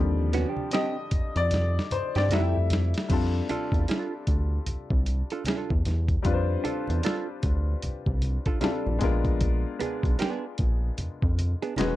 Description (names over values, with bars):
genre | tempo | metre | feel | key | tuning
R&B, neo-soul | 76 BPM | 4/4 | swing 62% on 16ths | F major | A4 = 440 Hz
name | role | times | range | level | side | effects
clear grand piano | accompaniment | 0.0-12.0 s | D3 to E5 | -31 LUFS | left 5 dB | plate reverb
rubbery square bass | bass | 0.0-12.0 s | E1 to G2 | -26 LUFS | equal | none
hollow-body jazz guitar | second line | 0.3-12.0 s | A3 to A4 | -31 LUFS | right 6 dB | plate reverb
dusty soul sampler-style drum kit | drums | 0.3-12.0 s | crash cymbal, hi-hat, kick drum, snare drum | -28 LUFS | equal | none
congas | percussion | 0.3-12.0 s | none | -38 LUFS | right 1 dB | none
room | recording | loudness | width
little or no reverb | dark, warm production | -24 LUFS | side -15 dB against mid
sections
0.0-3.1 A section; 3.1-12.0 B section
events
grand piano solo 0.0-3.1; drum fill 1.5-3.1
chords
0.0 Ebmaj13; 2.3 Fmaj9; 3.1 F6; 9.0 Bb7b9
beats
0.72 1.51 2.30 | 3.09 3.88 4.67 5.46 | 6.25 7.04 7.83 8.62 | 9.41 10.20 10.98 11.77